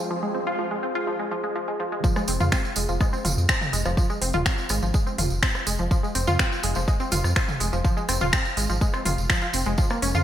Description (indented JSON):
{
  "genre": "melodic techno",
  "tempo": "124 BPM",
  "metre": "4/4",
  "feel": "straight",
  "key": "F minor",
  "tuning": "A4 = 441 Hz",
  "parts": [
    { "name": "wide unison pluck", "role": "arpeggios", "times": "0.0-10.2 s", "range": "F3 to F4", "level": "-27 LUFS", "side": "equal", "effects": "sidechain pumping, digital delay" },
    { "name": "round analog bass", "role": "bass", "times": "0.0-10.2 s", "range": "Eb1 to F2", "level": "-25 LUFS", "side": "equal", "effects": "tube saturation, sidechain pumping, high-pass filter" },
    { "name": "electronic kick drum", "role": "drums", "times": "2.0-9.9 s", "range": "none", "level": "-24 LUFS", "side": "equal", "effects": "none" },
    { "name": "tambourine", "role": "percussion", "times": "2.0-10.2 s", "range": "none", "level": "-33 LUFS", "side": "right 4 dB", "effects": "none" },
    { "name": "house drum kit", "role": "drums", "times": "2.2-10.2 s", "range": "finger snaps, hi-hat, rim click, toms", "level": "-26 LUFS", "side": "equal", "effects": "gated reverb" }
  ],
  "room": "moderate plate reverb, RT60 2.0 s",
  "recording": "bright 1980s-style digital production, high-pass filter",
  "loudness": "-21 LUFS",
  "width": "side -11 dB against mid",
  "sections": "0.0-2.0 A section; 2.0-10.2 B section",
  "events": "build-up 0.0-2.0; filter sweep 0.0-2.0; drop 2.0-10.2",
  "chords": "0.0 Fm",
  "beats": "| 0.10 0.59 1.07 1.55 | 2.04 2.52 3.01 3.49 | 3.97 4.46 4.94 5.43 | 5.91 6.39 6.88 7.36 | 7.84 8.33 8.81 9.30 | 9.78"
}